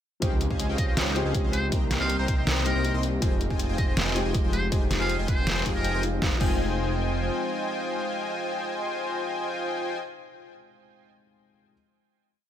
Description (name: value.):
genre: future bass.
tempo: 160 BPM.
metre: 4/4.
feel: half-time.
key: F minor.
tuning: A4 = 441 Hz.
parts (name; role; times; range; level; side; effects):
dark grand piano; accompaniment; 0.2-11.7 s; F3 to G4; -33 LUFS; left 4 dB; sidechain pumping, ping-pong delay.
airy breathy pad; sustained chords; 0.7-10.0 s; C3 to Bb4; -39 LUFS; equal; none.
big bright polysynth; riff; 0.2-10.0 s; C4 to C6; -30 LUFS; left 1 dB; analog chorus, sidechain pumping.
wide detuned saw bass; bass; 0.2-7.3 s; F1 to Db2; -29 LUFS; equal; chorus, sidechain pumping.
dubstep drum kit; drums; 0.2-6.5 s; crash cymbal, hi-hat, snare drum; -30 LUFS; equal; none.
electronic kick drum; drums; 0.2-6.5 s; none; -27 LUFS; right 1 dB; none.
trumpet with metal mute; melody; 0.8-6.0 s; Bb4 to F5; -33 LUFS; right 1 dB; vintage 12-bit sampler grit, sidechain pumping, dub echo.
room: light reverb.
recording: none.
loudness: -24 LUFS.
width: side -10 dB against mid.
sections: 0.2-6.2 drop; 6.2-9.2 final chord.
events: drop 0.2-6.2.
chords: 0.2 Dbmaj9#11; 1.7 Cm7; 3.2 Fm9.